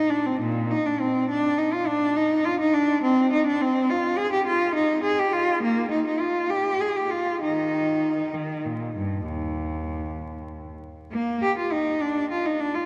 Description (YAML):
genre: classical, baroque-style suite movement for unaccompanied cello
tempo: 64-70 BPM (dotted quarters)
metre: 12/8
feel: rubato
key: Eb major from 3.9 s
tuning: A4 = 440 Hz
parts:
  - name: rich cello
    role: solo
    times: 0.0-12.9 s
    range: Eb2 to Ab4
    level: -24 LUFS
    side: equal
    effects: none
room: wet cathedral reverb, RT60 4.8 s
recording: vinyl crackle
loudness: -24 LUFS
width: mono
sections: 0.0-11.1 A section; 11.1-12.9 A section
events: none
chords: none